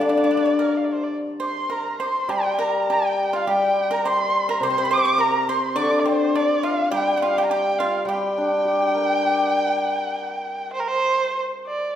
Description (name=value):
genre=chinese traditional, Chinese chamber ensemble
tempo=102 BPM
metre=4/4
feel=rubato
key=G yu mode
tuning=A4 = 441 Hz
part: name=dark erhu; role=melody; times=0.0-12.0 s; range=Bb4 to D6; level=-24 LUFS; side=right 2 dB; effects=none
part: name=bright large dizi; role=second line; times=0.0-11.0 s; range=C5 to D6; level=-28 LUFS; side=left 3 dB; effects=none
part: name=pipa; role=second line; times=0.0-11.0 s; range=C4 to D5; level=-27 LUFS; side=right 3 dB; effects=none
part: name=hammered dulcimer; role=accompaniment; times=0.0-10.4 s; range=C3 to D5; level=-22 LUFS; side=left 2 dB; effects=none
room=wet recital hall reverb, RT60 1.5 s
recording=heard from further back in the room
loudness=-19 LUFS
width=side -10 dB against mid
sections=0.0-11.7 A section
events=none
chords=none